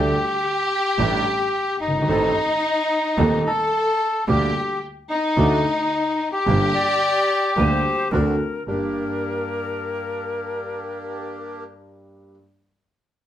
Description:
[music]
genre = tango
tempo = 109 BPM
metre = 4/4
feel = rubato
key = G harmonic minor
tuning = A4 = 440 Hz
[part]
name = bandoneon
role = melody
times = 0.0-8.1 s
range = Eb4 to A4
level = -22 LUFS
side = left 2 dB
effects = none
[part]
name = warm studio violin section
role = second line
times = 0.0-8.1 s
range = Eb4 to A4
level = -26 LUFS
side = left 1 dB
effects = none
[part]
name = warm concert grand piano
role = accompaniment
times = 0.0-12.3 s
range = Eb1 to A4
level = -25 LUFS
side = right 1 dB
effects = none
[part]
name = bandoneon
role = stabs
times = 0.0-11.6 s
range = A3 to A4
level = -32 LUFS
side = right 3 dB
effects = none
[part]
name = clear double bass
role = bass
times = 0.0-8.9 s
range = G1 to Eb2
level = -24 LUFS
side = right 1 dB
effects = none
[part]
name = bright silver concert flute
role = second line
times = 6.7-11.6 s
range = Bb4 to D5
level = -27 LUFS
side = left 2 dB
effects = none
[sound]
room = wet club reverb, RT60 0.7 s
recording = heard from further back in the room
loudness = -19 LUFS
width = side -11 dB against mid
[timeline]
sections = 0.0-8.7 A section; 8.7-10.9 B section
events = none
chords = 0.0 Dsus4; 2.1 Adim; 4.3 Gm/D; 5.4 D; 6.5 Gm; 8.1 D7; 8.7 Gm

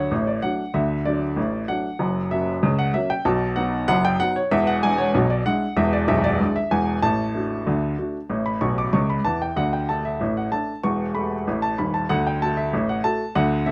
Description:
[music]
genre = ragtime piano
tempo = 95 BPM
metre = 2/4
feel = straight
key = D major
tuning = A4 = 441 Hz
[part]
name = warm baby grand piano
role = solo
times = 0.0-13.7 s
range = B0 to D6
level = -22 LUFS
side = equal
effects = none
[sound]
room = moderate studio reverb, RT60 0.8 s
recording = dark, warm production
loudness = -23 LUFS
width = mono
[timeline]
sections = 0.0-13.7 A section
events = grand piano fill 8.6-9.6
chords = 0.0 D; 2.0 F#; 3.3 B; 4.5 E7; 7.0 D/A; 8.3 A; 9.6 D5; 10.8 A5/E; 12.1 D

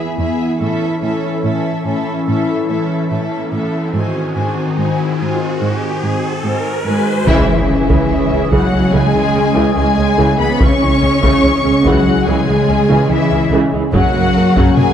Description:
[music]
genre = cinematic, hybrid orchestral and electronic film score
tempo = 72 BPM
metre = 4/4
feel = straight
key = C# dorian from 7.3 s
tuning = A4 = 440 Hz
[part]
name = rich symphonic violin section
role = second line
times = 0.0-14.9 s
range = E4 to G#5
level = -24 LUFS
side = left 2 dB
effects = none
[part]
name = dark symphonic viola section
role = accompaniment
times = 0.0-14.8 s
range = C#3 to F#4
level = -21 LUFS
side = equal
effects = low-pass filter
[part]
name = phased analog pad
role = sustained chords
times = 0.0-14.9 s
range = C#3 to A#4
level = -19 LUFS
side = left 1 dB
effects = phaser, chorus, low-pass filter
[part]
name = warm symphonic cello section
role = bass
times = 0.2-14.9 s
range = E2 to C#4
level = -20 LUFS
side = right 2 dB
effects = none
[part]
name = riser and impact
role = sound effects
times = 2.3-10.6 s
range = none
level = -24 LUFS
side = equal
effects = none
[part]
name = mellow French horn section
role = sustained chords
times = 6.8-14.9 s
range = E3 to C#4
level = -21 LUFS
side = left 1 dB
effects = none
[part]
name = warm symphonic violin section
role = melody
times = 6.9-14.9 s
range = E5 to C#6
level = -20 LUFS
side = left 6 dB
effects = low-pass filter
[part]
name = clear trombone section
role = sustained chords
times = 7.3-14.9 s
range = C#3 to A#3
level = -22 LUFS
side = right 3 dB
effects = none
[part]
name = rich symphonic double bass section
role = bass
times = 7.3-14.8 s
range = C#2 to F#2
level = -19 LUFS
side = right 2 dB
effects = none
[part]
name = taiko ensemble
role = drums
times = 7.3-14.9 s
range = none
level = -18 LUFS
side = equal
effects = none
[sound]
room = wet concert hall reverb, RT60 2.2 s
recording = dark, warm production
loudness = -12 LUFS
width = side -9 dB against mid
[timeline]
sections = 0.0-7.3 A section; 7.3-14.9 B section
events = build-up 0.0-7.3; filter sweep 0.0-7.3; riser 2.3-7.3; band accent 7.3-8.1; impact 7.3-10.6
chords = 0.0 E; 0.6 A; 3.9 G#7; 7.3 C#m; 13.9 F#

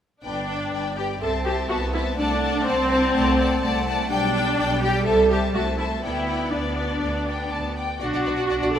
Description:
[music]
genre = quick classical-period movement for symphony orchestra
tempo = 124 BPM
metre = 4/4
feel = straight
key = G major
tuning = A4 = 440 Hz
[part]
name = rich chamber violin section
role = melody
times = 0.2-8.8 s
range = D5 to A5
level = -30 LUFS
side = left 4 dB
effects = none
[part]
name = clear chamber violin section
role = second line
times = 0.2-8.8 s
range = B4 to G5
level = -30 LUFS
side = left 4 dB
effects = none
[part]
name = rich symphonic viola section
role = accompaniment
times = 0.2-8.8 s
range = C4 to A4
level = -23 LUFS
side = equal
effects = none
[part]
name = clear chamber double bass section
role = bass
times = 0.2-8.8 s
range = G1 to D2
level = -28 LUFS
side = right 1 dB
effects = none
[part]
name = clear chamber cello section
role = bass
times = 1.2-8.8 s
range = G3 to D4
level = -28 LUFS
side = right 2 dB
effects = none
[sound]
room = wet scoring stage reverb, RT60 1.8 s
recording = none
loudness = -20 LUFS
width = side -9 dB against mid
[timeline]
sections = 0.2-8.8 A section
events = none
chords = 0.2 G; 1.2 Am/C; 2.2 D7/C; 4.1 G/B; 5.1 Am/C; 6.0 G/D; 7.0 D5; 8.0 Bm

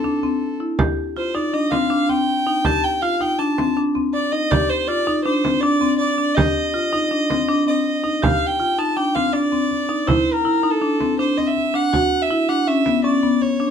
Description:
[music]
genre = contemporary instrumental, chamber music in an uneven meter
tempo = 162 BPM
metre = 5/4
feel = straight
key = C dorian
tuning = A4 = 438 Hz
[part]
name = warm violin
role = melody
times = 0.0-13.7 s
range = A4 to A5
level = -21 LUFS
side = right 1 dB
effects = none
[part]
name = marimba with medium hard mallets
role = arpeggios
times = 0.0-13.7 s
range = B3 to G4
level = -19 LUFS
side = left 1 dB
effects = none
[part]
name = frame drum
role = percussion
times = 0.0-13.5 s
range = none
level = -22 LUFS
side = right 3 dB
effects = none
[sound]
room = light reverb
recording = close, detailed microphones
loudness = -17 LUFS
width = side -7 dB against mid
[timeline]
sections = 0.0-8.2 A section; 8.2-13.7 B section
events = none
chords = 0.0 Am; 0.8 Cm; 10.1 Am; 11.9 E5

